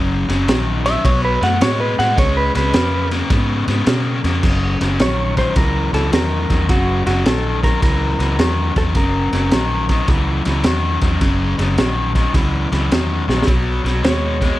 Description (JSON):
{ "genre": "electric blues shuffle", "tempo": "106 BPM", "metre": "4/4", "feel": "swing 66% on 8ths", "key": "F# mixolydian", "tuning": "A4 = 439 Hz", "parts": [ { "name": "overdriven electric guitar", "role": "riff", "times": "0.0-14.6 s", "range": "F#2 to B3", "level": "-20 LUFS", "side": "left 2 dB", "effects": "none" }, { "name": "vintage muted fingered electric bass", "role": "bass", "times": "0.0-14.5 s", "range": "F#1 to B2", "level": "-20 LUFS", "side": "equal", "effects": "none" }, { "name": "crunchy breakbeat drum kit", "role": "drums", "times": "0.3-14.5 s", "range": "crash cymbal, kick drum, ride cymbal, snare drum", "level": "-19 LUFS", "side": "equal", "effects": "none" }, { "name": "clean lap steel guitar", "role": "melody", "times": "0.9-14.6 s", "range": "F#4 to F#5", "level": "-21 LUFS", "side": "right 1 dB", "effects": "none" } ], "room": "light reverb", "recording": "none", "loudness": "-14 LUFS", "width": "side -16 dB against mid", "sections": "0.0-4.4 A section; 4.4-14.6 B section", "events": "electric slide guitar solo 0.0-4.4; drum fill 13.2", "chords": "0.0 F#; 1.0 B5; 2.2 C#7; 4.4 F#7; 13.5 B" }